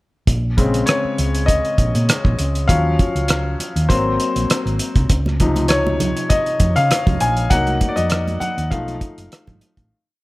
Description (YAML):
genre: lush 1970s-style soul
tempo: 100 BPM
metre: 4/4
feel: swing 54% on 16ths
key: Bb minor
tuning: A4 = 442 Hz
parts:
  - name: hollow-body short-scale fingered electric bass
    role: bass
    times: 0.3-9.9 s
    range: F#1 to Db3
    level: -20 LUFS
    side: equal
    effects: none
  - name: cloth-damped thuddy drum kit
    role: drums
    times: 0.3-9.9 s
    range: hi-hat, kick drum, rim click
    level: -18 LUFS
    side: equal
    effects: none
  - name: bright baby grand piano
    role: accompaniment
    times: 0.6-9.9 s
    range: C3 to Ab5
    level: -20 LUFS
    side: left 2 dB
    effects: none
  - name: congas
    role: percussion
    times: 5.3-9.8 s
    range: none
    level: -27 LUFS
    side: right 4 dB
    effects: none
room: small room ambience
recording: none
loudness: -15 LUFS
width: side -20 dB against mid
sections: 0.3-9.9 verse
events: grand piano solo 0.3-9.9; fade-out 7.5-9.9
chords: 0.3 Bbm9; 2.7 Ebm9; 3.9 Ab9; 5.1 Dbmaj9; 7.5 Cm7b5; 8.7 B7#11